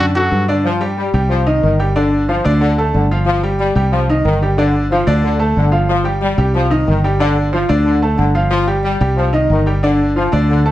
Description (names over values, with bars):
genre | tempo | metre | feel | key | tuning
latin | 183 BPM | 4/4 | straight | unclear | A4 = 440 Hz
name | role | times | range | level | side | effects
bright trumpet | melody | 0.0-0.5 s | F#4 | -17 LUFS | equal | none
bright upright piano | accompaniment | 0.0-10.7 s | D3 to A5 | -17 LUFS | equal | none
fingered electric bass | bass | 0.0-10.7 s | G1 to G2 | -16 LUFS | equal | none
brilliant trombone section | second line | 0.6-10.7 s | D3 to G3 | -19 LUFS | left 2 dB | none
room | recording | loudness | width
moderate large studio reverb, RT60 0.9 s | none | -12 LUFS | side -14 dB against mid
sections
0.6-10.7 A section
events
none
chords
0.0 D; 0.6 Csus4; 1.3 Cm; 2.0 G5; 2.6 D5; 3.3 G7sus4; 3.9 Cm; 4.6 G5; 5.2 D5; 5.9 G7sus4; 6.5 Cm; 7.2 G5; 7.9 D5; 8.5 G7sus4; 9.2 Cm; 9.8 G5